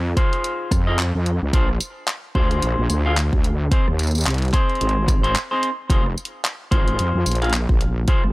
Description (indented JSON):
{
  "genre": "glitch hop",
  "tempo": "110 BPM",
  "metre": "4/4",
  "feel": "swing 58% on 16ths",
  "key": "F minor pentatonic",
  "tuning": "A4 = 440 Hz",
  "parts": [
    { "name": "wobble bass", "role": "bass", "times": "0.0-8.3 s", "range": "F1 to F2", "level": "-21 LUFS", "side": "equal", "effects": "chorus, overdrive" },
    { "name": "clean electric guitar", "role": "stabs", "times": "0.2-8.2 s", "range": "C4 to F5", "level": "-24 LUFS", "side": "left 1 dB", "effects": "sidechain pumping, tape echo" },
    { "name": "electronic kick drum", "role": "drums", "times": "0.2-8.2 s", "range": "none", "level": "-19 LUFS", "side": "equal", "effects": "none" },
    { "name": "pop drum kit", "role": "drums", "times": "0.2-8.3 s", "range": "handclaps, hi-hat, rim click, tambourine", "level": "-26 LUFS", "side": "equal", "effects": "none" }
  ],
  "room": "little or no reverb",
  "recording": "dry, gritty hardware recording",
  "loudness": "-18 LUFS",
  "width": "side -21 dB against mid",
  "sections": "0.0-8.3 A section",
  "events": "break 5.4-5.9",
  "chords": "0.0 Dbmaj7 (rootless); 1.5 Bb7; 3.7 Ab; 5.9 Fm7",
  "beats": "0.44 0.99 | 1.53 2.08 2.62 3.17 | 3.72 4.26 4.81 5.35 | 5.90 6.44 6.99 7.53 | 8.08"
}